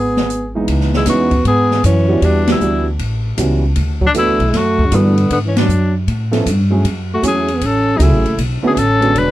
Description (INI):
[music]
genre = jazz, small-group swing and bop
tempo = 156 BPM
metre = 4/4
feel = swing 66% on 8ths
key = C# minor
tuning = A4 = 441 Hz
[part]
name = warm tenor saxophone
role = melody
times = 0.0-9.3 s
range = A#3 to B4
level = -18 LUFS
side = left 4 dB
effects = none
[part]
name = dark trombone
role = second line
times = 0.0-9.3 s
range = C#3 to D4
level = -18 LUFS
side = right 2 dB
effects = none
[part]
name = upright bass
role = bass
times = 0.0-9.3 s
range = E1 to A2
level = -16 LUFS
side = equal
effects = none
[part]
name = open jazz drum kit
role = drums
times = 0.2-9.3 s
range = hi-hat, kick drum, ride cymbal, snare drum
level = -22 LUFS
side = left 1 dB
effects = none
[part]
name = warm grand piano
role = accompaniment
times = 0.6-9.3 s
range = C#2 to C#5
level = -19 LUFS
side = right 3 dB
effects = none
[sound]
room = little or no reverb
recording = none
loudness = -12 LUFS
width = side -14 dB against mid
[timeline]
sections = 0.7-9.3 A section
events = band accent 2.4, 5.5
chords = 0.0 G#m; 0.7 C#m9; 2.2 Em7; 3.0 A13; 3.8 D6; 5.3 E9 (rootless); 6.1 C#7alt; 6.8 F#m7; 8.4 Bm9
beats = 0.30 | 0.68 1.07 1.45 1.84 | 2.22 2.61 2.99 3.38 | 3.76 4.15 4.53 4.92 | 5.30 5.69 6.07 6.46 | 6.84 7.22 7.61 7.99 | 8.38 8.76 9.14